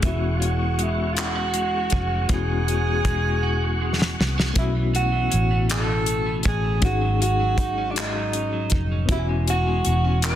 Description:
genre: slow six-eight R&B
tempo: 53 BPM (dotted quarters)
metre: 6/8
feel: straight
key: E major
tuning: A4 = 440 Hz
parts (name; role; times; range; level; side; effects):
- clean electric guitar; second line; 0.0-10.4 s; G#2 to F#4; -30 LUFS; right 4 dB; analog chorus, ping-pong delay
- overdriven reed electric piano; accompaniment; 0.0-10.4 s; F#3 to G#5; -30 LUFS; left 8 dB; fast tremolo
- percussive tonewheel organ; sustained chords; 0.0-4.5 s; G#4 to C#6; -33 LUFS; equal; overdrive, chorus vibrato, fast rotary speaker
- vintage muted fingered electric bass; bass; 0.0-10.4 s; E1 to C2; -24 LUFS; equal; none
- damped 70s drum kit; drums; 0.0-10.4 s; handclaps, hi-hat, kick drum, snare drum; -24 LUFS; equal; none
- mellow tenor saxophone; melody; 0.1-10.4 s; D4 to B4; -26 LUFS; right 2 dB; none
room: light reverb, studio ambience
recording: dense, heavily limited modern master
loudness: -20 LUFS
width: side -11 dB against mid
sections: 0.0-4.6 A section; 4.6-10.4 B section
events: drum fill 3.4-4.6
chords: 0.0 E69; 4.6 B9sus4; 6.8 G#7sus4; 9.1 E69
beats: | 0.03 1.16 | 2.30 3.43 | 4.56 5.69 | 6.83 7.96 | 9.09 10.22

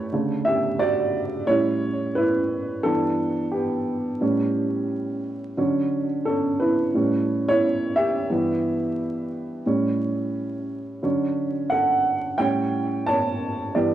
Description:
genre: hip hop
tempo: 88 BPM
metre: 4/4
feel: swing 60% on 16ths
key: D major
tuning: A4 = 443 Hz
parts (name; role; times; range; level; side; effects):
- dark upright piano; solo; 0.0-13.9 s; G2 to A5; -21 LUFS; right 1 dB; low-pass filter, cassette tape, analog delay
room: moderate spring reverb, RT60 2.6 s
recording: home recording on cassette, vinyl crackle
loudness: -21 LUFS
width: side -12 dB against mid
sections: 0.1-13.9 A section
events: upright piano solo 0.1-13.9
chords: 0.1 Dmaj7; 1.5 A7; 2.8 G6; 4.2 A7; 5.6 Dmaj7; 6.9 A7; 8.3 G6; 9.7 A7; 11.0 Dmaj7; 12.4 A7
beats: | 0.12 0.80 1.48 2.16 | 2.85 3.53 4.21 4.89 | 5.57 6.25 6.94 7.62 | 8.30 8.98 9.66 10.35 | 11.03 11.71 12.39 13.07 | 13.75

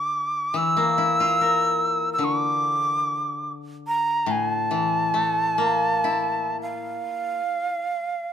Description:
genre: japanese traditional, Japanese chamber music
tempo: free time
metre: none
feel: none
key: D hirajoshi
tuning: A4 = 438 Hz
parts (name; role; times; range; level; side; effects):
- bright shakuhachi; melody; 0.0-8.3 s; F5 to E6; -22 LUFS; right 1 dB; none
- koto; accompaniment; 0.0-7.8 s; A2 to Bb4; -27 LUFS; left 5 dB; none
room: light reverb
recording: close, detailed microphones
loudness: -21 LUFS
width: side -9 dB against mid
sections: 0.0-8.3 A section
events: none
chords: none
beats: free time

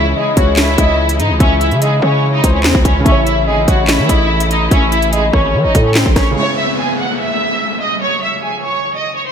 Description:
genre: hip hop, drill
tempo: 145 BPM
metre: 4/4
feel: half-time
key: C# minor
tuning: A4 = 441 Hz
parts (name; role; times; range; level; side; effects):
- clear symphonic violin section; melody; 0.0-9.3 s; G#3 to F#6; -17 LUFS; right 1 dB; low-pass filter, diffuse ambient delay
- soft octave-layered synth lead; second line; 0.0-5.9 s; A4 to E5; -19 LUFS; left 2 dB; chorus, diffuse ambient delay
- felt-muted upright piano; accompaniment; 0.0-9.3 s; C#3 to C#5; -24 LUFS; right 3 dB; low-pass filter
- warm symphonic string section; sustained chords; 0.0-6.3 s; C#3 to E4; -21 LUFS; left 2 dB; none
- distorted 808-style bass; bass; 0.0-6.4 s; G#1 to E3; -16 LUFS; equal; distortion
- drill drum kit; drums; 0.4-6.3 s; handclaps, hi-hat, kick drum, rim click, snare drum; -14 LUFS; equal; none
- downlifter; sound effects; 6.4-9.3 s; none; -22 LUFS; left 1 dB; none
room: moderate lush hall reverb, RT60 1.6 s, digital ambience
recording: dreamy mix soaked in reverb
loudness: -11 LUFS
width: side -7 dB against mid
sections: 0.0-6.4 A section; 6.4-9.3 B section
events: none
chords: 0.0 C#m; 3.1 A; 6.4 C#m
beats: 0.16 0.57 0.99 | 1.40 1.82 2.23 2.64 | 3.06 3.47 3.88 4.30 | 4.71 5.13 5.54 5.95 | 6.37 6.78 7.20 7.61 | 8.02 8.44 8.85 9.27

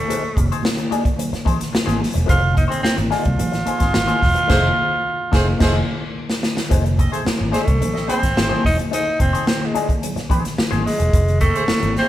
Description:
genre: funk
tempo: 108 BPM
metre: 4/4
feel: straight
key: F mixolydian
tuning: A4 = 445 Hz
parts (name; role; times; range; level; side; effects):
- raspy tenor saxophone; melody; 0.0-12.1 s; G#3 to F4; -21 LUFS; right 1 dB; none
- electric guitar at the edge of break-up; accompaniment; 0.1-11.0 s; A3 to D5; -26 LUFS; left 5 dB; wah
- swinging big-band drum kit; drums; 0.1-12.1 s; crash cymbal, hi-hat, kick drum, snare drum; -20 LUFS; equal; none
- congas; percussion; 0.1-12.1 s; none; -30 LUFS; right 4 dB; none
- vintage muted fingered electric bass; bass; 0.4-11.9 s; E1 to C2; -21 LUFS; equal; none
- warm horn section; second line; 4.5-12.1 s; A3 to Eb5; -26 LUFS; right 2 dB; none
room: moderate large studio reverb, RT60 1.4 s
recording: band playing live in one room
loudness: -16 LUFS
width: side -13 dB against mid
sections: 0.0-6.7 A section; 6.7-12.1 B section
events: band accent 4.5-6.7; drum fill 5.6-6.7; tenor saxophone solo 6.7-12.1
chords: 0.0 F7#9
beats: | 0.08 0.64 1.19 1.74 | 2.29 2.85 3.40 3.95 | 4.50 5.05 5.61 6.16 | 6.71 7.27 7.82 8.37 | 8.93 9.48 10.03 10.59 | 11.14 11.70

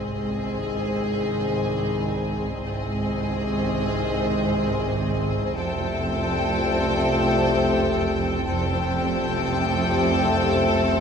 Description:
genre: cinematic, suspense film score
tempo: free time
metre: none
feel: none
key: unclear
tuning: A4 = 440 Hz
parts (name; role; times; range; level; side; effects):
- warm symphonic violin section; melody; 0.0-11.0 s; Eb5 to G5; -31 LUFS; left 5 dB; none
- clear symphonic violin section; second line; 0.0-11.0 s; Ab4 to A4; -30 LUFS; left 2 dB; none
- rich symphonic viola section; accompaniment; 0.0-11.0 s; C4; -29 LUFS; right 2 dB; none
- mellow French horn section; sustained chords; 0.0-11.0 s; C4 to Ab4; -29 LUFS; left 4 dB; none
- mellow trombone section; sustained chords; 0.0-11.0 s; Eb3 to A3; -29 LUFS; right 1 dB; none
- warm symphonic cello section; bass; 0.0-11.0 s; F2 to Ab2; -30 LUFS; right 2 dB; none
- warm symphonic double bass section; bass; 0.0-11.0 s; F1 to Ab1; -31 LUFS; right 3 dB; none
- overtone-sweeping drone; drone; 0.0-11.0 s; C2; -31 LUFS; left 1 dB; chorus, built-in reverb
room: wet recital hall reverb, RT60 1.7 s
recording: none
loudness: -21 LUFS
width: side -6 dB against mid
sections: 0.0-11.0 A section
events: none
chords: 0.0 Ab; 5.6 Fadd9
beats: free time

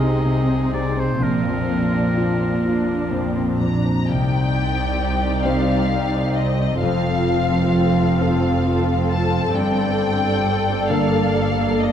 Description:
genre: cinematic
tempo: 43 BPM (dotted quarters)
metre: 6/8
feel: uneven beats, rubato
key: unclear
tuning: A4 = 440 Hz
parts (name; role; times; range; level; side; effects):
- muted symphonic violin section; melody; 0.0-11.9 s; F4 to Bb5; -27 LUFS; left 5 dB; none
- clear oboe; second line; 0.0-3.6 s; Bb4 to Eb5; -30 LUFS; right 2 dB; none
- muted symphonic violin section; second line; 0.0-11.9 s; D4 to F5; -27 LUFS; left 1 dB; none
- clear concert grand piano; accompaniment; 0.0-11.9 s; Bb1 to C5; -23 LUFS; left 3 dB; none
- muted symphonic viola section; accompaniment; 0.0-11.9 s; Bb3 to A4; -25 LUFS; equal; none
- muted symphonic cello section; bass; 0.0-11.9 s; C2 to C3; -25 LUFS; right 3 dB; none
- muted symphonic double bass section; bass; 0.0-11.9 s; F1 to C2; -24 LUFS; right 3 dB; none
room: moderate scoring stage reverb, RT60 1.6 s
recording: dark, warm production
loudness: -17 LUFS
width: side -9 dB against mid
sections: 0.0-4.1 A section; 4.1-11.9 B section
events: none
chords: 0.0 Ab/C; 1.2 Bbadd9; 4.1 Cmadd9; 6.8 F; 9.5 Gmadd9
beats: | 1.21 2.65 | 4.08 5.46 | 6.82 8.21 | 9.55 10.89

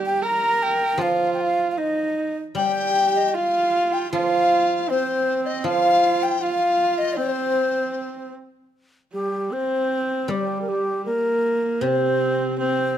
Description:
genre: chinese traditional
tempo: 78 BPM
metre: 2/4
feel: rubato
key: C yu mode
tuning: A4 = 440 Hz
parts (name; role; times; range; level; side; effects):
- clear horsehead fiddle; second line; 0.0-13.0 s; G3 to Bb4; -26 LUFS; right 4 dB; none
- guzheng; accompaniment; 0.0-7.9, 10.3-13.0 s; C3 to G3; -28 LUFS; right 2 dB; none
- breathy bright low xiao; melody; 0.1-13.0 s; G4 to Bb5; -22 LUFS; equal; none
- mellow hollow large dizi; second line; 2.6-8.3 s; C5 to G5; -25 LUFS; left 8 dB; none
room: light reverb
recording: close, detailed microphones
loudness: -19 LUFS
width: side -10 dB against mid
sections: 0.0-8.7 A section; 8.7-13.0 B section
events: none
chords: none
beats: 0.23 | 1.00 1.78 | 2.56 3.35 | 4.13 4.90 | 5.66 6.41 | 7.17 7.95 | 8.74 9.53 | 10.30 11.07 | 11.83 12.59

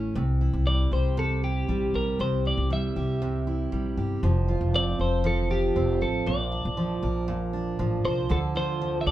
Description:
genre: pop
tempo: 118 BPM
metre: 4/4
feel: straight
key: unclear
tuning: A4 = 440 Hz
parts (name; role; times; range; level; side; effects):
- picked steel-string acoustic guitar; accompaniment; 0.0-9.1 s; Bb2 to Bb4; -28 LUFS; right 3 dB; none
- upright bass; bass; 0.0-9.1 s; F1 to D2; -27 LUFS; left 1 dB; none
- twelve-string electric guitar; melody; 0.7-9.1 s; G4 to E5; -29 LUFS; left 2 dB; none
room: wet studio ambience, RT60 0.5 s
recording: band playing live in one room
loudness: -24 LUFS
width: side -14 dB against mid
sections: 0.2-8.3 A section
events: none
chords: 0.2 C; 4.2 F; 6.3 Bb; 8.3 Dm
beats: | 0.15 0.66 1.18 1.69 | 2.19 2.71 3.21 3.73 | 4.24 4.74 5.25 5.76 | 6.27 6.78 7.29 7.80 | 8.30 8.81

